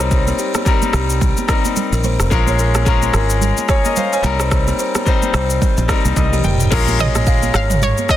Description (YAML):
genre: afrobeats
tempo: 109 BPM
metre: 4/4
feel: swing 58% on 16ths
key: Bb dorian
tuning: A4 = 438 Hz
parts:
  - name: bright grand piano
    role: accompaniment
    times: 0.0-8.2 s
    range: G3 to Ab5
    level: -20 LUFS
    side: left 6 dB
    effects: none
  - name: buzzing kalimba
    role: riff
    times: 0.0-8.2 s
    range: G4 to F5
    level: -23 LUFS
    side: right 2 dB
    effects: tape echo
  - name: fingered electric bass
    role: bass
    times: 0.0-7.9 s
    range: F1 to C2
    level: -18 LUFS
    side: equal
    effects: none
  - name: deep house drum kit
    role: drums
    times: 0.0-8.2 s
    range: crash cymbal, kick drum, rim click, shaker, toms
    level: -18 LUFS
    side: equal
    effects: soft clipping on snare
  - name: congas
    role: percussion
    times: 0.3-8.1 s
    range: none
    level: -26 LUFS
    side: right 8 dB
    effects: none
  - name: analog pluck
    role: melody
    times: 7.0-8.2 s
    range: Db5 to F5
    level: -21 LUFS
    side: right 1 dB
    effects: chorus
room: little or no reverb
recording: dense, heavily limited modern master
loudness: -13 LUFS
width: side -12 dB against mid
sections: 0.0-6.7 A section; 6.7-8.2 B section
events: grand piano fill 5.9-6.7; drum fill 6.2-6.7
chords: 0.0 Cm7; 2.3 Bbm7; 4.2 Cm7; 6.7 Bbm7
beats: | 0.11 0.66 1.21 1.76 | 2.31 2.87 3.42 3.97 | 4.52 5.07 5.62 6.17 | 6.72 7.27 7.82